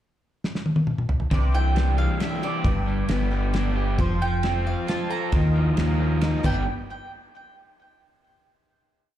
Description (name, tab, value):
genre	folk rock and heartland rock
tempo	134 BPM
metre	3/4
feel	straight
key	unclear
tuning	A4 = 438 Hz
part	damped 70s drum kit	drums	0.4-6.5 s	crash cymbal, kick drum, ride cymbal, snare drum, toms	-26 LUFS	equal	none
part	bowl-back mandolin	melody	1.3-6.7 s	C5 to Bb5	-32 LUFS	right 3 dB	slapback echo, digital delay
part	picked acoustic archtop guitar	accompaniment	1.3-6.6 s	G2 to B4	-33 LUFS	left 3 dB	slapback echo
part	tonewheel organ	sustained chords	1.3-6.8 s	C4 to C5	-39 LUFS	equal	slow rotary speaker, chorus vibrato
part	crunchy overdriven guitar	riff	1.3-6.6 s	G2 to A4	-28 LUFS	equal	slapback echo
part	deep dub fingered electric bass	bass	1.3-6.7 s	F1 to Eb2	-23 LUFS	equal	none
room	studio ambience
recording	live gig heard through the venue's PA, club reverb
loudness	-21 LUFS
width	side -12 dB against mid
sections	0.0-1.3 pickup bar; 1.3-6.7 pre-chorus; 6.7-8.0 final hit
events	drum fill 0.4-1.3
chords	0.0 N.C.; 1.3 Cadd9; 2.6 G; 4.0 F; 5.3 Ebsus2; 6.4 G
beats	0.42 0.87 | 1.31 1.76 2.20 | 2.65 3.10 3.54 | 3.99 4.43 4.88 | 5.33 5.78 6.22 | 6.67